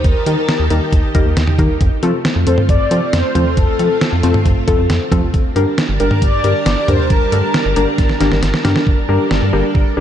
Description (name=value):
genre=synth-pop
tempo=136 BPM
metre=4/4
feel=straight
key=unclear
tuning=A4 = 441 Hz
part: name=mellow synth brass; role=melody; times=0.0-8.4 s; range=A4 to D5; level=-21 LUFS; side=left 1 dB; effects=chorus, tape echo
part: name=string machine, full ensemble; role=sustained chords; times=0.0-10.0 s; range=Eb3 to A5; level=-23 LUFS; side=equal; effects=ensemble chorus
part: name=rubbery square bass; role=bass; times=0.0-10.0 s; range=G1 to F3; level=-17 LUFS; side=equal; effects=none
part: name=detuned 8-bit digital drum machine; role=drums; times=0.0-9.9 s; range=hi-hat, kick drum, snare drum, toms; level=-16 LUFS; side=equal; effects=none
part: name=warbly dusty pluck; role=accompaniment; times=0.3-10.0 s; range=C4 to Bb4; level=-19 LUFS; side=left 2 dB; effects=chorus
room=light reverb, digital ambience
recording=dark, warm production, nothing above 10.3 kHz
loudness=-12 LUFS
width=side -10 dB against mid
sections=0.0-8.9 A section; 8.9-10.0 B section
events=drum fill 8.0-8.9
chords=0.0 Eb; 1.8 F; 5.3 Gmadd9